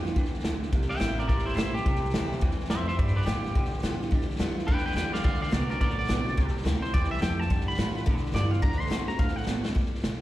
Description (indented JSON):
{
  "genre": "rockabilly",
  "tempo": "212 BPM",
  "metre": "4/4",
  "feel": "swing 62% on 8ths",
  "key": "G mixolydian",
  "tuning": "A4 = 441 Hz",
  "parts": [
    { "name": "twangy electric guitar", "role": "melody", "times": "0.0-9.5 s", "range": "E4 to C6", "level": "-33 LUFS", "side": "equal", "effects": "slapback echo, tape echo" },
    { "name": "picked steel-string acoustic guitar", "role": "accompaniment", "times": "0.0-10.2 s", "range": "G2 to F#4", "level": "-35 LUFS", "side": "left 2 dB", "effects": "slapback echo" },
    { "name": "electric guitar through a small old amp", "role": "riff", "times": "0.0-9.7 s", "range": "G2 to B3", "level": "-34 LUFS", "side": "right 3 dB", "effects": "phaser, slapback echo" },
    { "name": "upright bass", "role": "bass", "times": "0.0-10.2 s", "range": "G1 to B2", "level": "-31 LUFS", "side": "equal", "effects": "none" },
    { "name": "vintage drum kit", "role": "drums", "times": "0.1-10.1 s", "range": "hi-hat, kick drum, snare drum", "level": "-28 LUFS", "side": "equal", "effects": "none" }
  ],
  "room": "small room ambience",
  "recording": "live gig heard through the venue's PA, recital hall reverb",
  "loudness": "-25 LUFS",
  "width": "side -15 dB against mid",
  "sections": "0.0-9.8 A section",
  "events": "clean electric guitar solo 0.0-9.8; drum fill 5.0, 9.5",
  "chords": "0.0 G7; 0.7 C7; 3.0 G7; 5.2 D7; 6.4 C7; 7.5 G7; 8.6 D7"
}